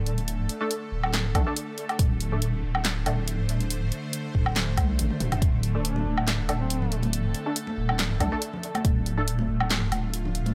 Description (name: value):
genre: deep dubstep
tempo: 140 BPM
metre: 4/4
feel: swing 54% on 16ths, half-time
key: D minor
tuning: A4 = 442 Hz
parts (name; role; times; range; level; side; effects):
- bowed-like drone; sustained chords; 0.0-10.5 s; D3 to C5; -37 LUFS; equal; built-in reverb, phaser
- deep soft wobble bass; bass; 0.0-10.5 s; D1 to C2; -29 LUFS; equal; chorus
- deep house drum kit; drums; 0.1-10.5 s; handclaps, hi-hat, snare drum, toms, woodblock; -31 LUFS; equal; none
- filtered dub chord stab; stabs; 0.6-3.1, 5.7-9.2 s; A3 to A4; -36 LUFS; equal; ensemble chorus, dub echo
- electronic kick drum; drums; 1.3-5.5, 8.2-8.9 s; none; -27 LUFS; equal; none
- warm duduk; melody; 5.8-7.0 s; C4 to D4; -40 LUFS; equal; dub echo
- congas; percussion; 6.0-10.5 s; none; -36 LUFS; equal; dub echo
room: digital ambience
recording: none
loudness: -27 LUFS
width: mono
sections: 0.0-10.5 A section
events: drum fill 5.0-5.4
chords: 0.0 D5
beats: | 0.28 0.71 1.13 1.56 | 1.99 2.42 2.85 3.28 | 3.71 4.13 4.56 4.99 | 5.42 5.85 6.28 6.71 | 7.13 7.56 7.99 8.42 | 8.85 9.28 9.71 10.13